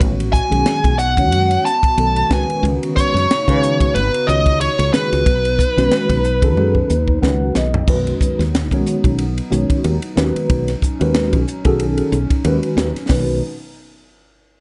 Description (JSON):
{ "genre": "electric jazz fusion", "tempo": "92 BPM", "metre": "4/4", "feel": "swing 56% on 16ths", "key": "B mixolydian", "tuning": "A4 = 442 Hz", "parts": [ { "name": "mellow tine electric piano", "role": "accompaniment", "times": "0.0-13.4 s", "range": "D#3 to F#5", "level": "-23 LUFS", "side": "equal", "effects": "phaser, plate reverb" }, { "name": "hollow soft pad", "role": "sustained chords", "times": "0.0-13.4 s", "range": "B2 to F#4", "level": "-30 LUFS", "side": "equal", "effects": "chorus" }, { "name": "woody fretless electric bass", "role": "bass", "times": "0.0-13.4 s", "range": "G#1 to C#3", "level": "-21 LUFS", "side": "equal", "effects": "none" }, { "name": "crisp fusion drum kit", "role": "drums", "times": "0.0-13.3 s", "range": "crash cymbal, hi-hat, kick drum, ride cymbal, snare drum, toms", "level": "-22 LUFS", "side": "equal", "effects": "none" }, { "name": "smooth overdriven lead guitar", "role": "melody", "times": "0.3-7.2 s", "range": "B4 to A5", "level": "-20 LUFS", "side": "equal", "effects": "slapback echo, plate reverb" } ], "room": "light reverb", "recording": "nothing above 11.0 kHz, faint mains hum", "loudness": "-17 LUFS", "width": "mono", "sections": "0.0-7.9 A section; 7.9-13.1 B section; 13.1-14.6 C section", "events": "drum fill 6.6-7.9; tine electric piano fill 6.9-7.9", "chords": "0.0 B7; 2.3 C#sus2; 5.3 B9; 13.1 B" }